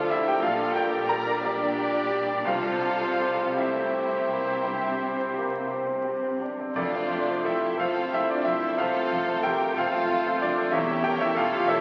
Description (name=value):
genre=classical, romantic movement for piano and orchestra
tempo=53-64 BPM (dotted quarters)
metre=12/8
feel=rubato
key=F major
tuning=A4 = 442 Hz
part: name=clear baby grand piano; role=melody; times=0.0-11.8 s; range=Bb1 to Bb5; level=-30 LUFS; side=equal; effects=none
part: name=rich chamber violin section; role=melody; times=0.0-11.8 s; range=F4 to D5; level=-37 LUFS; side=equal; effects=none
part: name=clear oboe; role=second line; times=0.0-11.8 s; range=C5 to D5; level=-37 LUFS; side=equal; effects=none
part: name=dark clarinet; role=second line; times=0.0-11.8 s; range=F4 to A4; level=-42 LUFS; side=equal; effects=none
part: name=mellow hollow small flute group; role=second line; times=0.0-11.8 s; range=D5 to Bb5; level=-37 LUFS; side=equal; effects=none
part: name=rich chamber violin section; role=second line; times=0.0-11.8 s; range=D5 to Bb5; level=-39 LUFS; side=equal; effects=none
part: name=mellow bassoon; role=accompaniment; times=0.0-11.8 s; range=F3 to D4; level=-36 LUFS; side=equal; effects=none
part: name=rich chamber viola section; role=accompaniment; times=0.0-11.8 s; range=D4 to Bb4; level=-36 LUFS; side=equal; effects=none
part: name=dark French horn section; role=sustained chords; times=0.0-11.8 s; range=F4 to C5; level=-36 LUFS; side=equal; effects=none
part: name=clear chamber double bass section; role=bass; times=0.0-11.8 s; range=E1 to D2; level=-50 LUFS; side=equal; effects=none
part: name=clear studio cello section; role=bass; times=0.0-11.8 s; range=D2 to C3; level=-41 LUFS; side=equal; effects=none
part: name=timpani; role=percussion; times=2.5-7.8 s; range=F2 to C3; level=-49 LUFS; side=equal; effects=none
room=wet scoring stage reverb, RT60 1.8 s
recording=very old 78 rpm record, vinyl crackle, nothing above 7.7 kHz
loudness=-26 LUFS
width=mono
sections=0.0-11.8 A section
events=none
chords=0.4 Gm/Bb; 2.5 C; 6.8 F; 10.7 A7/E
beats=0.42 1.44 | 2.46 3.58 4.67 5.72 | 6.75 7.79 8.78 9.77 | 10.74 11.69